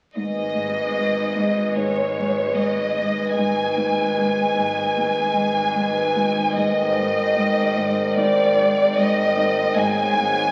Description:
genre	cinematic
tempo	75 BPM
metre	4/4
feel	straight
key	unclear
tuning	A4 = 437 Hz
part	warm studio violin section	melody	0.2-10.5 s	C#5 to G#5	-24 LUFS	equal	none
part	glass harmonica	sustained chords	0.2-10.5 s	G#4 to G#5	-26 LUFS	equal	none
part	rich studio cello section	riff	0.2-10.4 s	G#2 to G#3	-29 LUFS	equal	none
part	rich studio cello section	bass	0.2-10.5 s	G#2	-34 LUFS	equal	none
part	warm studio double bass section	bass	0.2-10.5 s	G#1	-34 LUFS	equal	none
room	wet scoring stage reverb, RT60 1.8 s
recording	very old 78 rpm record, vinyl crackle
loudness	-21 LUFS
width	mono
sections	0.2-10.5 A section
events	none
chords	0.2 G#m; 6.6 D#6/G#; 9.8 F#sus2/G#

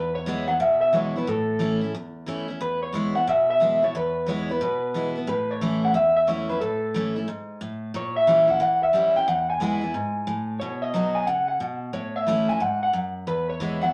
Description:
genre	rock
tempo	180 BPM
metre	4/4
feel	swing 64% on 8ths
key	E major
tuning	A4 = 439 Hz
part	electric guitar through a small old amp	melody	0.0-13.9 s	A4 to G#5	-25 LUFS	equal	spring reverb
part	picked steel-string acoustic guitar	accompaniment	0.0-13.9 s	E2 to F#4	-30 LUFS	equal	none
room	moderate small room reverb, RT60 0.6 s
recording	none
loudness	-24 LUFS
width	mono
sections	0.0-13.9 A section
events	none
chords	0.0 E; 1.3 A; 2.6 E; 5.3 A; 7.9 A#dim7; 9.3 E; 10.6 B; 11.9 A; 13.3 E

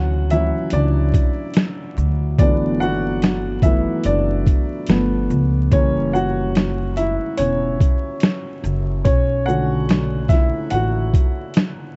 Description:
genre	lo-fi hip hop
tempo	72 BPM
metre	4/4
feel	swing 56% on 16ths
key	unclear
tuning	A4 = 440 Hz
part	dark upright piano	accompaniment	0.0-12.0 s	D3 to F#5	-23 LUFS	equal	cassette tape
part	upright bass	bass	0.0-11.1 s	E1 to D2	-24 LUFS	equal	none
part	boom bap sampler-style drum kit	drums	0.3-11.8 s	hi-hat, kick drum, shaker, snare drum	-19 LUFS	equal	none
room	light reverb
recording	dark, warm production, vinyl crackle, nothing above 7.9 kHz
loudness	-19 LUFS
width	mono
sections	0.0-12.0 A section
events	upright piano solo 0.0-12.0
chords	0.0 Dmaj9; 2.4 Gmaj13; 4.9 G9; 5.7 F#7b9; 9.0 Bm9

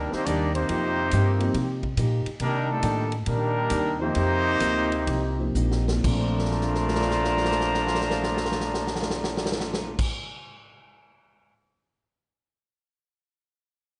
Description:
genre	jazz, big band swing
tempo	119-140 BPM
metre	4/4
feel	swing 67% on 8ths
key	Bb major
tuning	A4 = 440 Hz
part	mellow trumpet section	melody	0.0-10.0 s	G3 to Bb5	-30 LUFS	equal	none
part	bright trombone section	second line	0.0-10.0 s	Bb2 to Eb4	-32 LUFS	equal	none
part	picked steel-string acoustic guitar	accompaniment	0.0-10.1 s	C3 to C5	-36 LUFS	equal	none
part	upright bass	bass	0.0-10.0 s	Bb1 to C3	-30 LUFS	equal	none
part	swinging big-band drum kit	drums	0.1-11.5 s	crash cymbal, hi-hat, kick drum, ride cymbal, snare drum	-34 LUFS	equal	none
part	dark grand piano	accompaniment	0.7-10.3 s	Bb2 to C7	-34 LUFS	equal	none
room	moderate large studio reverb, RT60 0.8 s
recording	nothing above 10.3 kHz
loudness	-25 LUFS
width	mono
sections	0.0-6.0 A section; 6.0-10.1 B section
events	slowing down 2.4-6.0; drum fill 5.6-6.0, 6.3-9.9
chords	0.0 Cm9; 0.7 F9sus4; 2.4 Cm9; 4.2 F9sus4; 6.0 Bbmaj9

